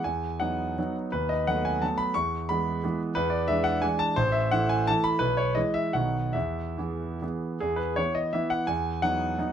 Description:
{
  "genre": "classical, romantic triple-time dance for piano with dotted rhythms",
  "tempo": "133-187 BPM",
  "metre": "3/4",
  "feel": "rubato",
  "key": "E major",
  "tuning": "A4 = 440 Hz",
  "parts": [
    { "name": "clear concert grand piano", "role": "solo", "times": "0.0-9.5 s", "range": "A1 to C#6", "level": "-25 LUFS", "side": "equal", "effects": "none" }
  ],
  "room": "light reverb",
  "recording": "close, detailed microphones",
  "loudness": "-25 LUFS",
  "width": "side -9 dB against mid",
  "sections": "0.0-7.6 A section; 7.6-9.5 A section",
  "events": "none",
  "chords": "0.1 B/E; 1.1 B7/D#; 2.2 E; 3.2 E7; 4.2 A5; 5.2 E/B; 5.9 B; 6.3 E; 7.6 E5; 8.7 B/E"
}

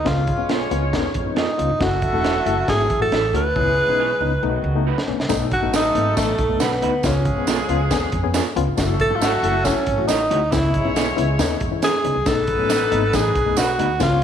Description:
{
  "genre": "uptempo 1960s-style soul",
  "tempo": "138 BPM",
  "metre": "4/4",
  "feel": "straight",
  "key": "B mixolydian",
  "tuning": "A4 = 440 Hz",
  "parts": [
    { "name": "breathy tenor saxophone", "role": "melody", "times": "0.0-14.2 s", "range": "A3 to B4", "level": "-20 LUFS", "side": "right 1 dB", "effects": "slapback echo" },
    { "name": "barky reed electric piano", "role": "accompaniment", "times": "0.0-14.2 s", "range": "A3 to A4", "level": "-26 LUFS", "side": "left 11 dB", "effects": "overdrive, fast tremolo" },
    { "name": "upright bass", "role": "bass", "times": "0.0-14.2 s", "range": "E1 to E#2", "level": "-24 LUFS", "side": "right 1 dB", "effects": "none" },
    { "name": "dark horn section", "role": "second line", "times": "0.1-14.2 s", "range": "D#3 to C#5", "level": "-28 LUFS", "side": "equal", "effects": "slapback echo" },
    { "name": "crunchy breakbeat drum kit", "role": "drums", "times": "0.1-14.1 s", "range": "hi-hat, kick drum, snare drum", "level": "-24 LUFS", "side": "right 1 dB", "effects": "none" },
    { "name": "electric guitar through a small old amp", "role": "stabs", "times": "0.5-13.9 s", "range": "A3 to C#5", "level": "-30 LUFS", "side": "right 11 dB", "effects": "none" },
    { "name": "tambourine", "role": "percussion", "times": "5.3-14.1 s", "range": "none", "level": "-34 LUFS", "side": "right 14 dB", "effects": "none" }
  ],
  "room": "moderate echo chamber reverb, RT60 1.7 s, small room ambience",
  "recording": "1960s-style stereo with parts hard left and right",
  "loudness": "-17 LUFS",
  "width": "side -8 dB against mid",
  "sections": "0.0-5.3 A section; 5.3-14.2 A section",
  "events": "drum fill 3.5-5.3",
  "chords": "0.1 C#7; 1.8 F#m7; 3.5 C#m7; 4.4 B7; 7.0 C#7; 8.8 F#m7; 10.5 C#m7; 12.3 B7"
}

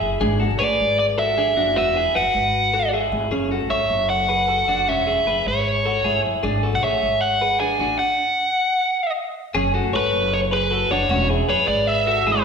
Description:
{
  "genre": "jangly indie pop",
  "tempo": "154 BPM",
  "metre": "4/4",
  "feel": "straight",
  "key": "F# minor",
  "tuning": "A4 = 440 Hz",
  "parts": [
    { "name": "twelve-string electric guitar", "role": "arpeggios", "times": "0.0-12.4 s", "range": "B3 to C#5", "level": "-23 LUFS", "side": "left 1 dB", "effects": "none" },
    { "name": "upright bass", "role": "bass", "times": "0.0-12.4 s", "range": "E1 to B1", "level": "-26 LUFS", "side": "equal", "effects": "none" },
    { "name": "biting lead guitar", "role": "melody", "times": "0.6-12.4 s", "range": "B4 to G#5", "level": "-20 LUFS", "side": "right 1 dB", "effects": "overdrive" }
  ],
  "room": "wet recital hall reverb, RT60 1.3 s",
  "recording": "recorded in a church or concert hall",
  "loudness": "-18 LUFS",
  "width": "side -6 dB against mid",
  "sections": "0.0-3.3 A section; 3.3-9.5 B section; 9.5-12.4 A section",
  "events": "none",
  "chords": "0.2 G#dim; 1.8 Esus2; 3.3 F#madd9; 4.9 C#m/E; 6.4 G#dim; 8.0 N.C.; 9.5 F#madd9; 11.1 C#m/E"
}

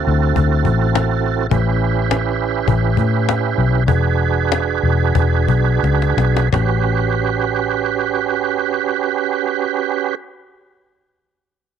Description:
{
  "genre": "straight-eighth soul blues",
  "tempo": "83-104 BPM",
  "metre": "4/4",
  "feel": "straight",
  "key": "A mixolydian",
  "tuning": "A4 = 445 Hz",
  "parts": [
    { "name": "tonewheel organ", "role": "accompaniment", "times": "0.0-10.2 s", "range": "C4 to B4", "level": "-18 LUFS", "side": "right 11 dB", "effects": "slow rotary speaker, overdrive, chorus vibrato" },
    { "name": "vintage muted fingered electric bass", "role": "bass", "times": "0.0-10.1 s", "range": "E1 to A2", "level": "-17 LUFS", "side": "left 2 dB", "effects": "none" },
    { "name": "cajon", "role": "drums", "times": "0.4-6.7 s", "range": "none", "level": "-20 LUFS", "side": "left 11 dB", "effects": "none" }
  ],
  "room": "light reverb, small room ambience",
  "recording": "1960s-style stereo with parts hard left and right",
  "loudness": "-15 LUFS",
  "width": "side -8 dB against mid",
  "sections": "0.0-6.5 A section; 6.5-9.4 B section",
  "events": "slowing down 1.5-6.5; drum fill 5.8-6.5",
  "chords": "0.0 D9; 1.5 A9; 3.9 E9; 6.5 A13"
}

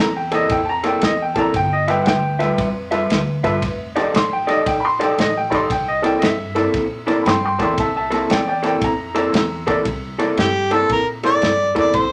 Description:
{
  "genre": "electric blues shuffle",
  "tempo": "115 BPM",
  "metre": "4/4",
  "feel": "swing 65% on 8ths",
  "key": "C mixolydian",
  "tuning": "A4 = 438 Hz",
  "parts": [
    { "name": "clear upright piano", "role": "accompaniment", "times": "0.0-11.8 s", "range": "Eb4 to C6", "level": "-22 LUFS", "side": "equal", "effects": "none" },
    { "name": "electric guitar through a small old amp", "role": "riff", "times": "0.0-12.0 s", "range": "C3 to E5", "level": "-23 LUFS", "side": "equal", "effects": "spring reverb" },
    { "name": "upright bass", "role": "bass", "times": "0.0-12.1 s", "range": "F1 to Bb2", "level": "-31 LUFS", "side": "equal", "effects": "none" },
    { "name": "natural country drum kit", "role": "drums", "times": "0.3-12.1 s", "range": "kick drum, ride cymbal, snare drum", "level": "-26 LUFS", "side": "equal", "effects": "none" },
    { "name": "clear harmonica", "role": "melody", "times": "10.4-12.1 s", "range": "G4 to D5", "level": "-19 LUFS", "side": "equal", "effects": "overdrive" }
  ],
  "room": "moderate club reverb, RT60 0.6 s",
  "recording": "none",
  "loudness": "-18 LUFS",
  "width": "mono",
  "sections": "0.0-9.9 A section; 9.9-12.1 B section",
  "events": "none",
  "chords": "0.0 C13; 1.5 G13; 3.6 F13; 5.7 C13"
}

